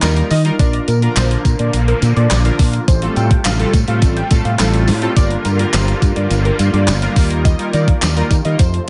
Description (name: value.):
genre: dance-pop.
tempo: 105 BPM.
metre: 4/4.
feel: straight.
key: Bb major.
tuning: A4 = 441 Hz.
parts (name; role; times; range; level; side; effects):
chorused polysynth; accompaniment; 0.0-8.6 s; G3 to Bb4; -24 LUFS; equal; sidechain pumping.
fingered electric bass; bass; 0.0-8.8 s; G1 to Eb3; -18 LUFS; equal; sidechain pumping.
gated 80s digital drum machine; drums; 0.0-8.9 s; handclaps, hi-hat, kick drum, snare drum; -18 LUFS; equal; gated reverb, gated reverb snare, overdrive.
tambourine; percussion; 0.0-8.7 s; none; -33 LUFS; equal; none.
fat analog lead; melody; 0.3-8.8 s; Bb4 to G5; -27 LUFS; equal; tape echo.
filtered supersaw swell; sustained chords; 0.6-8.9 s; C3 to F4; -27 LUFS; equal; ensemble chorus, sidechain pumping.
room: little or no reverb.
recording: nothing above 10.8 kHz.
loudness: -15 LUFS.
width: mono.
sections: 0.0-8.9 A section.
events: none.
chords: 0.0 Ebadd9; 0.6 Bb; 2.9 Fadd9/A; 5.2 Gm7; 7.2 Ebadd9.